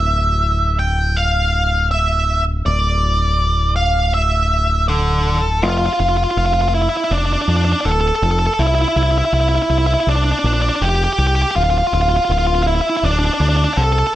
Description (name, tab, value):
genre	post-rock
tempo	81 BPM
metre	4/4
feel	straight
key	unclear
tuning	A4 = 440 Hz
part	octave-fuzz lead guitar	melody	0.0-14.1 s	D4 to G5	-17 LUFS	equal	distortion, tape echo
part	growling fingered electric bass	bass	0.0-14.0 s	D1 to F2	-17 LUFS	equal	overdrive
room	light reverb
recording	none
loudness	-14 LUFS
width	side -13 dB against mid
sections	0.0-5.6 A section; 5.6-14.2 B section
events	none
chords	0.0 N.C.; 5.6 F; 8.6 C; 11.6 Dm